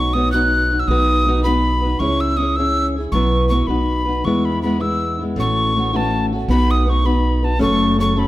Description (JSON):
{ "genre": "celtic folk, Celtic jig", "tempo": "107 BPM (dotted quarters)", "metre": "6/8", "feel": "straight", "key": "unclear", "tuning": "A4 = 440 Hz", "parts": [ { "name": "wooden whistle", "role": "melody", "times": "0.0-8.3 s", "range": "A5 to F#6", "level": "-20 LUFS", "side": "left 1 dB", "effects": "none" }, { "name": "fingerpicked steel-string acoustic guitar", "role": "accompaniment", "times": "0.0-8.3 s", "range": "A2 to C#5", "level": "-19 LUFS", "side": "left 1 dB", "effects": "none" }, { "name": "upright bass", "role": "bass", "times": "0.0-8.3 s", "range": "F#1 to E2", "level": "-20 LUFS", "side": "right 1 dB", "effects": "none" } ], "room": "moderate recital hall reverb, RT60 1.8 s", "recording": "close, detailed microphones", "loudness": "-15 LUFS", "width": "side -16 dB against mid", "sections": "0.0-5.4 A section; 5.4-8.3 A section", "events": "none", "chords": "0.0 Badd9; 0.9 B; 2.0 C#m; 3.1 Bsus4; 3.7 B; 4.2 E; 5.4 A6; 6.5 B; 7.6 F#m" }